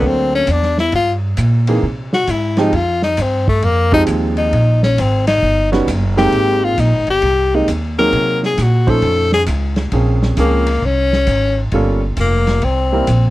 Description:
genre	jazz, small-group swing and bop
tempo	133 BPM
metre	4/4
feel	swing 66% on 8ths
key	unclear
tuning	A4 = 440 Hz
part	edgy tenor saxophone	melody	0.0-13.3 s	A3 to Bb4	-16 LUFS	left 3 dB	none
part	clear grand piano	accompaniment	0.0-13.1 s	E3 to C5	-17 LUFS	right 2 dB	none
part	upright bass	bass	0.0-13.3 s	F1 to C3	-16 LUFS	right 1 dB	none
part	vintage drum kit	drums	0.0-13.2 s	hi-hat, kick drum, ride cymbal, snare drum	-24 LUFS	equal	none
room	little or no reverb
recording	dry, close 1970s-style studio recording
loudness	-13 LUFS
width	side -16 dB against mid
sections	0.0-6.3 A section; 6.3-13.3 A section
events	tenor saxophone solo 0.0-13.3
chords	0.0 D7b13; 0.9 Abmaj9/G; 1.8 Cm; 2.7 Fm9; 4.5 Abadd9; 5.4 Eb7alt; 6.3 Abmaj9; 8.1 Cm7b5; 9.0 F7b13; 9.9 Bbm9; 11.7 Gm7b5; 12.6 C7

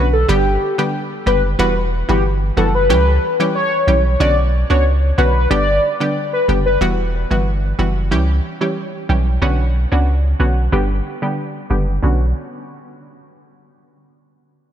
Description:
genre	dancehall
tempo	92 BPM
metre	4/4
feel	straight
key	B minor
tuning	A4 = 440 Hz
part	warm velvety synth lead	melody	0.0-6.8 s	G4 to D5	-18 LUFS	left 2 dB	chorus, ping-pong delay
part	analog pluck	accompaniment	0.0-12.3 s	D3 to G4	-20 LUFS	right 1 dB	chorus, low-pass filter
part	punchy sub bass	bass	0.0-12.3 s	E1 to C#2	-16 LUFS	equal	none
room	light reverb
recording	none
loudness	-14 LUFS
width	side -10 dB against mid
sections	0.0-6.8 A section; 6.8-12.0 B section; 12.0-14.6 C section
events	filter sweep on synth pluck 6.8-12.0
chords	0.3 G; 1.6 Emadd9; 2.9 C#dim; 4.2 Bmadd9; 5.5 G; 6.8 Emadd9; 8.1 C#dim; 9.4 Bmadd9; 10.7 G; 12.0 Bmadd9

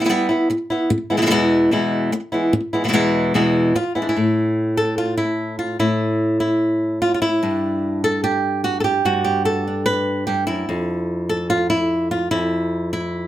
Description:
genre	flamenco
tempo	147 BPM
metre	4/4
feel	straight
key	unclear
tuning	A4 = 440 Hz
part	flamenco guitar	solo	0.0-13.3 s	E2 to B4	-17 LUFS	equal	slapback echo
room	light reverb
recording	close, detailed microphones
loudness	-17 LUFS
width	side -13 dB against mid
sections	0.0-4.2 A section; 4.2-13.3 B section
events	none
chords	0.0 G6; 0.9 E; 4.2 N.C.; 7.4 Gmaj7; 10.7 N.C.

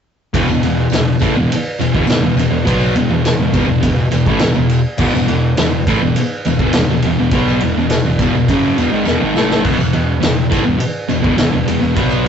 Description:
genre	garage rock duo or trio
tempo	103 BPM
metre	4/4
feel	straight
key	unclear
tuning	A4 = 439 Hz
part	thick fuzz guitar	riff	0.3-12.3 s	E2 to B3	-14 LUFS	left 1 dB	distortion
part	hollow-body short-scale fingered electric bass	bass	0.3-12.3 s	E1 to B1	-22 LUFS	equal	overdrive
part	vintage drum kit	drums	0.3-12.3 s	crash cymbal, kick drum, ride cymbal, snare drum	-18 LUFS	right 1 dB	none
part	tambourine	percussion	0.5-12.3 s	none	-36 LUFS	left 5 dB	none
room	moderate studio reverb, RT60 0.5 s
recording	rough rehearsal-room recording, warm saturation, nothing above 7.9 kHz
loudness	-12 LUFS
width	side -7 dB against mid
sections	0.3-12.3 A section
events	drum fill 9.1-9.6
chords	0.3 E5

